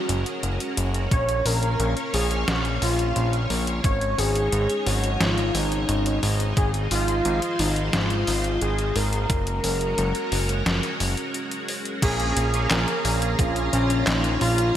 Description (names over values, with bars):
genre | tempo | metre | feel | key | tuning
synthwave | 88 BPM | 4/4 | straight | Bb minor | A4 = 436 Hz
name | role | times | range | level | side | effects
warm velvety synth lead | melody | 0.0-14.8 s | Db4 to Db5 | -27 LUFS | equal | chorus, digital delay
string machine, full ensemble | sustained chords | 0.0-14.8 s | Ab3 to Bb5 | -29 LUFS | equal | ensemble chorus, sidechain pumping
fat analog bass | bass | 0.1-14.7 s | Gb1 to Bb1 | -25 LUFS | equal | tube saturation
detuned 8-bit digital drum machine | drums | 0.1-14.7 s | crash cymbal, handclaps, hi-hat, snare drum | -27 LUFS | left 1 dB | overdrive
electronic kick drum | drums | 1.1-13.5 s | none | -23 LUFS | equal | overdrive
analog synth brass | stabs | 12.0-14.7 s | Bb3 to Ab4 | -28 LUFS | right 3 dB | chorus, digital delay
room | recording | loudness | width
moderate lush hall reverb, RT60 1.9 s, digital ambience | bright 1980s-style digital production | -21 LUFS | side -11 dB against mid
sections
0.0-12.0 A section; 12.0-14.8 B section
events
break 11.3-12.0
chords
0.0 Gbadd9; 1.1 Bbm; 3.8 Absus4; 6.6 Fm7/Ab; 9.3 Gbadd9; 12.0 Bbm7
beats
0.43 | 1.11 1.80 2.48 3.16 | 3.84 4.52 5.21 5.89 | 6.57 7.25 7.93 8.62 | 9.30 9.98 10.66 11.34 | 12.02 12.71 13.39 14.07 | 14.75